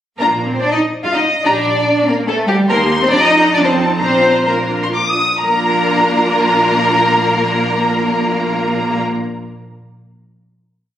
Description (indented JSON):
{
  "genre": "quick classical-period movement for string orchestra",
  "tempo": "124-145 BPM",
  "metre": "3/4",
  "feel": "straight",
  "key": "Bb major",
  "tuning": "A4 = 440 Hz",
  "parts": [
    { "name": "warm symphonic violin section", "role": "melody", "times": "0.2-9.0 s", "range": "A5 to Eb6", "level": "-17 LUFS", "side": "left 1 dB", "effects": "none" },
    { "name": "rich symphonic violin section", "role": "second line", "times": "0.2-9.0 s", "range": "G4 to F5", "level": "-17 LUFS", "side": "left 2 dB", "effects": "none" },
    { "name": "warm symphonic viola section", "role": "accompaniment", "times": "0.2-9.0 s", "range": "D4 to G4", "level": "-21 LUFS", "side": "right 1 dB", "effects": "none" },
    { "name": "warm chamber double bass section", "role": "bass", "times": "0.2-9.0 s", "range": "Bb1 to F2", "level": "-25 LUFS", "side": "right 2 dB", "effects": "none" },
    { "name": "warm symphonic cello section", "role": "bass", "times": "0.2-9.0 s", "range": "G3 to F4", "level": "-18 LUFS", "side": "right 1 dB", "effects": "none" }
  ],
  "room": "wet recital hall reverb, RT60 1.4 s",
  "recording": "recorded on a phone in the room, studio reverb, compression",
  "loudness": "-12 LUFS",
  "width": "side -11 dB against mid",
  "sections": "0.2-5.4 A section; 5.4-8.2 final chord",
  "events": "slowing down 2.1-5.4",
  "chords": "0.2 Bb; 1.5 Gm/Bb; 2.7 Cm7/Eb; 3.1 Bb/F; 3.6 F7; 4.0 Bb"
}